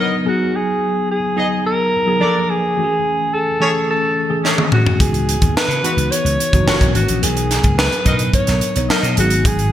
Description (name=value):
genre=polished 1980s jazz-funk pop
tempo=108 BPM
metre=4/4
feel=straight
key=unclear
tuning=A4 = 440 Hz
part: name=mellow horn section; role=second line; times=0.0-9.1 s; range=G#3 to D#5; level=-24 LUFS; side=equal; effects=none
part: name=tine electric piano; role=accompaniment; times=0.0-9.7 s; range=E3 to C#5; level=-21 LUFS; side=left 1 dB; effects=medium stereo tremolo, analog chorus
part: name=breathy alto saxophone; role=melody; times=0.3-9.7 s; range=F#4 to C#5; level=-19 LUFS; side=equal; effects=none
part: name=crisp fusion drum kit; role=drums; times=4.4-9.7 s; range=hi-hat, kick drum, snare drum, toms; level=-17 LUFS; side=equal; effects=gated reverb
part: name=slap bass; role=bass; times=5.0-9.7 s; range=F#1 to C#3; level=-19 LUFS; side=equal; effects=none
room=moderate lush hall reverb, RT60 2.0 s, small room ambience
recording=bright 1980s-style digital production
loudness=-14 LUFS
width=side -11 dB against mid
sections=0.0-9.7 A section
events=drum fill 4.4-5.0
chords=0.3 G#m7; 2.2 A#maj7; 2.8 Amaj7; 5.0 C#m11; 6.7 F#7; 7.2 Bmaj7; 9.2 G#m7